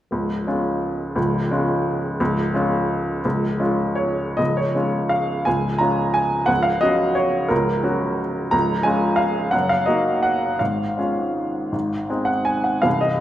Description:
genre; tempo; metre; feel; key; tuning
classical, piano waltz; 137-187 BPM; 3/4; rubato; Db major; A4 = 440 Hz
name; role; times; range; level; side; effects
clear upright piano; solo; 0.1-13.2 s; C1 to Bb5; -18 LUFS; equal; none
room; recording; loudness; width
wet recital hall reverb, RT60 1.6 s; none; -18 LUFS; side -12 dB against mid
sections
0.1-4.4 A section; 4.4-13.2 B section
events
none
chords
0.1 Db; 6.5 Gb/Db; 8.5 Db; 9.5 Ebm/Gb; 10.6 Db/Ab; 11.7 Ab

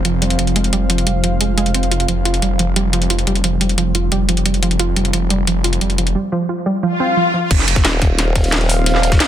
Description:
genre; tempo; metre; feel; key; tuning
dark technical drum and bass; 177 BPM; 4/4; straight; unclear; A4 = 440 Hz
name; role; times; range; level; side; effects
dark analog pad; sustained chords; 0.0-9.3 s; F3 to F5; -24 LUFS; equal; chorus, sidechain pumping
warbly dusty pluck; arpeggios; 0.0-7.4 s; F3 to F4; -19 LUFS; right 3 dB; chorus, sidechain pumping, dub echo
snarling distorted saw bass; bass; 0.0-7.8 s; F1; -18 LUFS; equal; distortion, overdrive
drum and bass drum kit; drums; 0.0-9.3 s; crash cymbal, hi-hat, snare drum; -19 LUFS; equal; none
swell; sound effects; 6.9-7.5 s; none; -18 LUFS; left 4 dB; none
crunchy breakbeat drum kit; drums; 7.5-9.3 s; hi-hat, snare drum; -27 LUFS; equal; none
electronic kick drum; drums; 7.5-9.2 s; none; -15 LUFS; equal; none
formant-sweep wobble bass; bass; 7.8-9.2 s; Eb1; -16 LUFS; equal; chorus
room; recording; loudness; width
light reverb, digital ambience; dense, heavily limited modern master; -14 LUFS; side -11 dB against mid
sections
0.0-7.5 A section; 7.5-9.3 B section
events
filter sweep on analog synth pad 0.0-7.5; swell 6.9-7.5; drop 7.5-9.3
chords
0.0 F5

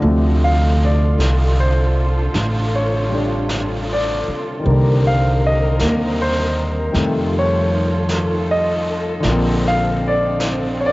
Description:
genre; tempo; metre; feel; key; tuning
jazz ballad; 52 BPM; 4/4; swing 66% on 8ths; unclear; A4 = 440 Hz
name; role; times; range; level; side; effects
warm concert grand piano; accompaniment; 0.0-10.9 s; C3 to F5; -19 LUFS; left 1 dB; cassette tape
upright bass; bass; 0.0-10.9 s; A1 to F2; -18 LUFS; equal; none
vintage brush drum kit; drums; 0.0-10.9 s; brushed snare drum, hi-hat, snare drum; -28 LUFS; equal; cassette tape
dark studio string section; sustained chords; 0.1-10.9 s; C3 to Bb4; -25 LUFS; equal; cassette tape
room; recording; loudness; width
light reverb, small room reverb; home recording on cassette, nothing above 7.7 kHz; -15 LUFS; side -20 dB against mid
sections
0.0-10.9 A section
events
none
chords
0.0 Dm7; 4.7 Cm9; 7.0 F9; 9.3 Bbmaj9

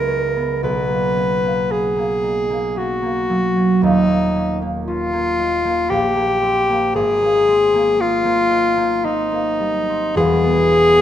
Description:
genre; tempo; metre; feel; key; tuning
classical, impressionist duo for alto saxophone and harp; 57 BPM; 3/4; rubato; B major; A4 = 440 Hz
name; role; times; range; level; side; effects
clear alto saxophone; melody; 0.0-11.0 s; D#4 to B4; -17 LUFS; left 1 dB; none
concert harp; accompaniment; 0.0-11.0 s; D#1 to E4; -20 LUFS; right 1 dB; none
room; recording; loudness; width
moderate recital hall reverb, RT60 1.6 s; none; -15 LUFS; side -10 dB against mid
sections
0.0-11.0 A section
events
none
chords
0.0 C#m7; 0.6 Bmaj9; 3.8 D#sus2; 5.9 A#madd9; 7.0 G#maj9; 10.2 E6

